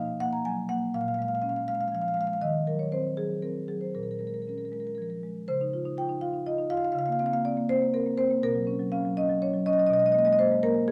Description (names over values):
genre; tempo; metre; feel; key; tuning
classical, contemporary piece for solo marimba; 82 BPM (dotted quarters); 6/8; straight; unclear; A4 = 441 Hz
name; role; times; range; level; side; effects
marimba with medium mallets; solo; 0.0-10.9 s; Bb2 to A#5; -28 LUFS; equal; none
room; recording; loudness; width
moderate stone room reverb, RT60 1.1 s; none; -28 LUFS; mono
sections
0.0-5.5 A section; 5.5-10.9 B section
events
none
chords
0.0 Bmaj7; 0.9 Bbm7; 2.4 Ebm6; 3.9 Bbm7; 5.5 Dbmaj9; 7.0 C7sus4/Db; 8.4 Bsus2; 9.9 Bb7sus4/Cb